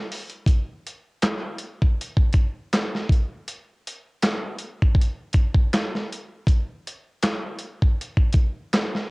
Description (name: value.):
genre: hip hop.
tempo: 80 BPM.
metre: 4/4.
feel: swing 57% on 16ths.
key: none.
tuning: none.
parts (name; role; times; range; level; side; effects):
dusty soul sampler-style drum kit; drums; 0.1-9.0 s; handclaps, hi-hat, kick drum, snare drum; -20 LUFS; equal; cassette tape.
room: light reverb.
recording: home recording on cassette.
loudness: -21 LUFS.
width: side -29 dB against mid.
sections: 0.5-9.1 A section.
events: none.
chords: none.